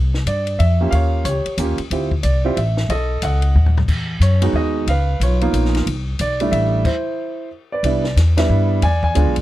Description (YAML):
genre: jazz piano trio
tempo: 182 BPM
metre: 3/4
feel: swing 62% on 8ths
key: unclear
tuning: A4 = 439 Hz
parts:
  - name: upright bass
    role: bass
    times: 0.0-9.4 s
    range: G#1 to G2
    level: -17 LUFS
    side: equal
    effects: none
  - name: compact cocktail drum kit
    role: drums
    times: 0.1-9.4 s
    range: crash cymbal, hi-hat, kick drum, ride cymbal, snare drum, toms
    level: -27 LUFS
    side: left 2 dB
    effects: none
  - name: warm upright piano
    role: melody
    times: 0.3-9.3 s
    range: G3 to G#5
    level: -20 LUFS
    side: right 2 dB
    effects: none
room: little or no reverb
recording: dark, warm production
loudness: -15 LUFS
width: side -15 dB against mid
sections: 0.0-7.8 A section; 7.8-9.4 B section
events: drum fill 3.6-3.9; stop 6.9-7.8; band accent 8.3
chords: 0.0 Cadd9; 0.9 Eb9; 1.9 Dm11; 2.9 B7; 3.9 Emaj9; 4.9 Db13; 5.9 C69; 7.8 Cmaj9; 8.8 E7b9